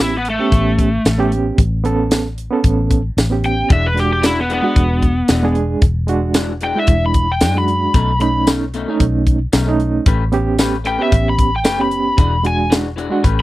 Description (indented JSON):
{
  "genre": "straight-eighth soul blues",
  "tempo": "113 BPM",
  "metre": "4/4",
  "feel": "swing 53% on 16ths",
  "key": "E mixolydian",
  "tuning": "A4 = 440 Hz",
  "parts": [
    { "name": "overdriven slide guitar", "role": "melody", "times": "0.0-12.7 s", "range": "A3 to B5", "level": "-18 LUFS", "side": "left 1 dB", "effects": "none" },
    { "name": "overdriven reed electric piano", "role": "accompaniment", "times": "0.0-13.2 s", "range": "G#3 to A4", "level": "-19 LUFS", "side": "right 4 dB", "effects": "fast tremolo" },
    { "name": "vintage muted fingered electric bass", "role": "bass", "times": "0.0-13.4 s", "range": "E1 to F#2", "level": "-19 LUFS", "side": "equal", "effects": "none" },
    { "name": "tight funk drum kit", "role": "drums", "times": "0.0-13.4 s", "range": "hi-hat, kick drum, snare drum, tambourine", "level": "-15 LUFS", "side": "equal", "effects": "none" },
    { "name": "electric guitar through a small old amp", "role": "stabs", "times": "3.7-13.4 s", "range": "B2 to B4", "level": "-24 LUFS", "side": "left 5 dB", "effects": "none" }
  ],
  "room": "little or no reverb",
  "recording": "dry, close 1970s-style studio recording",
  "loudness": "-13 LUFS",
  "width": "side -17 dB against mid",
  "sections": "0.0-13.4 A section",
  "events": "electric slide guitar solo 0.0-13.4",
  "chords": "0.0 A9; 3.7 E9; 7.9 B9; 10.1 A9; 12.2 E9"
}